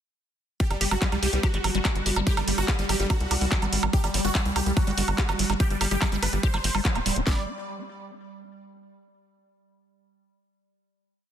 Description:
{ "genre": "psychedelic trance", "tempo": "144 BPM", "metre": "4/4", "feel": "straight", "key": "unclear", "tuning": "A4 = 442 Hz", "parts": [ { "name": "supersaw stab", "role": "melody", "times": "0.6-7.4 s", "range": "G3 to D5", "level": "-31 LUFS", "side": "right 1 dB", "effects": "phaser, sidechain pumping, digital delay" }, { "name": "evolving wavetable pad", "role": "sustained chords", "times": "1.4-7.3 s", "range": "G3", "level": "-35 LUFS", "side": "right 1 dB", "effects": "chorus, built-in reverb, sidechain pumping" }, { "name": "liquid acid bass", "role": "riff", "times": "0.6-7.5 s", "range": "F#3 to G4", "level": "-32 LUFS", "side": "moving between left 4 dB and right 5 dB", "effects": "phaser, auto-pan, sidechain pumping, digital delay" }, { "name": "garage drum kit", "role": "drums", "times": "0.6-7.4 s", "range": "handclaps, kick drum, snare drum", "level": "-24 LUFS", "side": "equal", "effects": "none" }, { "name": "garage drum kit", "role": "drums", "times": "0.6-7.2 s", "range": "handclaps, hi-hat, woodblock", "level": "-28 LUFS", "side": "right 2 dB", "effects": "soft clipping on snare" }, { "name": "tight sequencer bass", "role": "bass", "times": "0.7-7.5 s", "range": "D1 to C2", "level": "-28 LUFS", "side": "equal", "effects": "none" }, { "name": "formant-sweep wobble bass", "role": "second line", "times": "1.3-3.2 s", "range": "D3 to B3", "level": "-44 LUFS", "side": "right 3 dB", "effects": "none" } ], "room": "light reverb, digital ambience", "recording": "dense, heavily limited modern master", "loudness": "-22 LUFS", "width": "side -9 dB against mid", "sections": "0.6-7.3 drop; 7.3-8.9 final chord", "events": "drop 0.6-7.3", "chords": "0.6 G5", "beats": "| 0.60 1.02 1.43 1.85 | 2.27 2.68 3.10 3.52 | 3.93 4.35 4.77 5.18 | 5.60 6.02 6.43 6.85 | 7.27" }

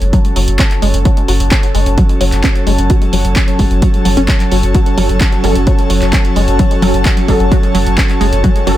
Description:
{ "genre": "driving peak-time techno", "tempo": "130 BPM", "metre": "4/4", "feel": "straight", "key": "F# minor", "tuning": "A4 = 440 Hz", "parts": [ { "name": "warm sub bass", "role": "bass", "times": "0.0-8.8 s", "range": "F#1", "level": "-14 LUFS", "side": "equal", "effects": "sidechain pumping, low-pass filter" }, { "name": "analog drone", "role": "drone", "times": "0.0-8.8 s", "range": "F#3 to C#4", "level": "-20 LUFS", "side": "equal", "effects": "chorus, sidechain pumping" }, { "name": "punchy analog drum machine", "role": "drums", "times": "0.0-8.8 s", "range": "handclaps, hi-hat", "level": "-20 LUFS", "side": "equal", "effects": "sidechain pumping on hats, sidechain pumping on cymbals" }, { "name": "airy breathy pad", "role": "texture", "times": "0.0-8.8 s", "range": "F#4 to A5", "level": "-20 LUFS", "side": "left 1 dB", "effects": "chorus, sidechain pumping" }, { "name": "tight sequenced synth", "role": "riff", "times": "0.1-8.7 s", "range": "F#3 to C#4", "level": "-19 LUFS", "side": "equal", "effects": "chorus, phaser, sidechain pumping, tape echo" }, { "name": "electronic kick drum", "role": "drums", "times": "0.1-8.5 s", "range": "none", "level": "-12 LUFS", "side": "equal", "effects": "overdrive" }, { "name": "rave stab", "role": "stabs", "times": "5.0-8.8 s", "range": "F#3 to A4", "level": "-19 LUFS", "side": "right 1 dB", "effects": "chorus, built-in reverb, sidechain pumping, tape echo" } ], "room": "little or no reverb", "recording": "none", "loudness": "-9 LUFS", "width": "side -13 dB against mid", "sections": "0.0-8.8 A section", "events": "none", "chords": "0.0 F#m", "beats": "0.13 0.59 | 1.05 1.52 1.98 2.44 | 2.90 3.36 3.82 4.29 | 4.75 5.21 5.67 6.13 | 6.59 7.05 7.52 7.98 | 8.44" }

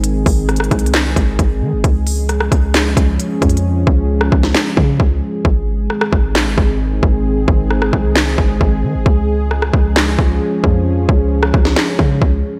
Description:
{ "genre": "hip hop, trap", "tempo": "133 BPM", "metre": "4/4", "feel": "half-time", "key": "unclear", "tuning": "A4 = 441 Hz", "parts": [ { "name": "dark analog pad", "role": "sustained chords", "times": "0.0-12.6 s", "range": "Eb3 to Ab4", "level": "-22 LUFS", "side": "equal", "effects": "chorus" }, { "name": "warm 808-style bass", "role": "bass", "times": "0.0-12.4 s", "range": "Ab1 to Eb3", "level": "-19 LUFS", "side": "equal", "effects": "none" }, { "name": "trap drum kit", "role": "drums", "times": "0.0-12.3 s", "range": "handclaps, hi-hat, kick drum, rim click, snare drum", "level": "-17 LUFS", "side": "equal", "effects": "none" } ], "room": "light reverb", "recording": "none", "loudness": "-15 LUFS", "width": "mono", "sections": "0.0-12.6 A section", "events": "hi-hats muted 3.6-5.4, 5.4-12.6", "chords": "0.0 Ab; 1.8 Db; 5.4 Ab; 9.1 Db", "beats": "| 0.04 0.49 0.94 1.39 | 1.84 2.29 2.74 3.19 | 3.65 4.10 4.55 5.00 | 5.45 5.90 6.35 6.80 | 7.25 7.71 8.16 8.61 | 9.06 9.51 9.96 10.41 | 10.86 11.31 11.77 12.22" }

